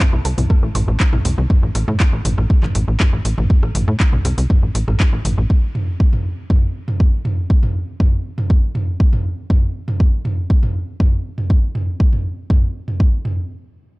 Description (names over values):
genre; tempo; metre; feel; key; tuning
melodic techno; 120 BPM; 4/4; straight; A minor; A4 = 440 Hz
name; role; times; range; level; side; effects
analog pluck; arpeggios; 0.0-1.5 s; E3 to C5; -31 LUFS; left 1 dB; chorus, sidechain pumping, dub echo
deep house drum kit; drums; 0.0-13.4 s; handclaps, hi-hat, rim click, toms; -22 LUFS; equal; overdrive
electronic kick drum; drums; 0.0-13.1 s; none; -14 LUFS; equal; overdrive
tight sequencer bass; bass; 0.1-5.5 s; A1 to A2; -18 LUFS; equal; sidechain pumping
room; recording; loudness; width
digital ambience; dark, warm production, nothing above 10.5 kHz; -15 LUFS; side -23 dB against mid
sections
0.0-13.5 A section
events
filter sweep on synth arpeggio sound 0.0-1.5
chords
0.0 Am